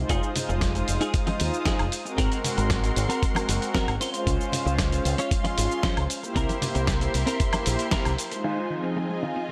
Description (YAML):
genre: nu-disco, nu disco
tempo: 115 BPM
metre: 4/4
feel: straight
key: F minor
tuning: A4 = 440 Hz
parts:
  - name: warm analog pad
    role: accompaniment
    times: 0.0-9.5 s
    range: F3 to C6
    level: -32 LUFS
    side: equal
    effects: chorus, sidechain pumping, tape echo
  - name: fingered electric bass with an envelope filter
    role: bass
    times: 0.0-8.1 s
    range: F1 to Eb2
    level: -29 LUFS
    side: equal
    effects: none
  - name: rich studio string section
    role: sustained chords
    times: 0.1-9.5 s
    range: Ab3 to Eb6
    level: -38 LUFS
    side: equal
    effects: vintage 12-bit sampler grit, sidechain pumping
  - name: clean electric guitar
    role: riff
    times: 0.1-9.4 s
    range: C4 to Db5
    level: -33 LUFS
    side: equal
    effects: ensemble chorus, low-pass filter, tape echo
  - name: dusty soul sampler-style drum kit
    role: drums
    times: 0.1-9.5 s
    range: crash cymbal, hi-hat, shaker, snare drum, woodblock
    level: -34 LUFS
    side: equal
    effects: low-pass filter on hats, low-pass filter on snare, low-pass filter on perc, low-pass filter on cymbals
  - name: electronic kick drum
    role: drums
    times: 0.1-8.0 s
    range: none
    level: -29 LUFS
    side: equal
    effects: none
  - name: congas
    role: percussion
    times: 0.4-8.0 s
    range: none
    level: -36 LUFS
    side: equal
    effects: none
  - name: unison pluck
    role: arpeggios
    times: 8.4-9.5 s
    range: Eb3 to C4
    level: -39 LUFS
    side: equal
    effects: sidechain pumping, tape echo
room: light reverb, digital ambience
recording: none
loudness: -26 LUFS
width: mono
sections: 0.0-8.4 A section; 8.4-9.5 B section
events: band accent 7.9; filter sweep on clean electric guitar 8.4-9.5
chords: 0.1 Fm7; 2.2 Ab9; 4.0 Dbmaj7; 6.4 C7; 8.4 Fm7